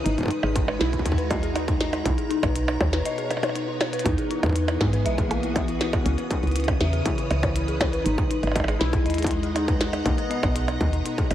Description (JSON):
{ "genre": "IDM", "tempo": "120 BPM", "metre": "4/4", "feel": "straight", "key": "unclear", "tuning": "A4 = 440 Hz", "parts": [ { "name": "warbly lo-fi synth keys", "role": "melody", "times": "0.0-11.0 s", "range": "G#3 to E4", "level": "-31 LUFS", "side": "equal", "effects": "chorus, diffuse ambient delay" }, { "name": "soft string machine", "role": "sustained chords", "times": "0.0-11.3 s", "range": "B2 to D#6", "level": "-31 LUFS", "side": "equal", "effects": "ensemble chorus" }, { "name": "dark detuned synth bell", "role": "arpeggios", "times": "0.0-11.3 s", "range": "D#4 to E5", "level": "-30 LUFS", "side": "left 3 dB", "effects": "chorus, diffuse ambient delay" }, { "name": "woody FM bass", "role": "bass", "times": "0.0-11.3 s", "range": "G#1 to G#2", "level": "-26 LUFS", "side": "equal", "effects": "none" }, { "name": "glitchy drum kit", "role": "drums", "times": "0.1-11.3 s", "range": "hi-hat, percussion blips, snare drum", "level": "-29 LUFS", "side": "right 1 dB", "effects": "none" }, { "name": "electronic kick drum", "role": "drums", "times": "0.2-11.3 s", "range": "none", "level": "-26 LUFS", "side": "equal", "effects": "distortion" } ], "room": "light reverb", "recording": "none", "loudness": "-21 LUFS", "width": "side -12 dB against mid", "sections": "0.0-11.3 A section", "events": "break 3.1-4.1; drum fill 3.8", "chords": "0.1 G#m7; 2.1 Bmaj7; 4.1 Emaj7; 6.1 C#m7; 8.1 G#m7; 10.1 Bmaj7" }